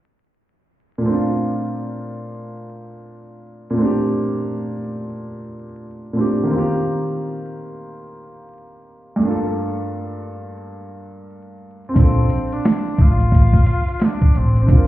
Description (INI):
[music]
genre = lo-fi hip hop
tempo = 88 BPM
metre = 4/4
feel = swing 62% on 16ths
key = Bb major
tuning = A4 = 440 Hz
[part]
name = warm upright piano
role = accompaniment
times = 1.0-14.9 s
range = G2 to Bb4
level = -22 LUFS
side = right 1 dB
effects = none
[part]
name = clear tenor saxophone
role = melody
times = 12.0-14.9 s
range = C4 to F4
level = -25 LUFS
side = left 1 dB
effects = tape echo
[part]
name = upright bass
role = bass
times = 12.0-14.9 s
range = A1 to Bb1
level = -15 LUFS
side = equal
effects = none
[part]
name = boom bap sampler-style drum kit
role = drums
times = 12.0-14.9 s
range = hi-hat, kick drum, snare drum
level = -14 LUFS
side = equal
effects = none
[sound]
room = light reverb, studio ambience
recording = heard muffled through a wall, club reverb, vinyl crackle, EQ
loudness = -16 LUFS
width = side -15 dB against mid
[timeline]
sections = 1.0-12.0 A section; 12.0-14.9 B section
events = none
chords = 1.0 Bbmaj9; 6.5 Eb69; 9.2 Gm9; 12.0 Bbmaj9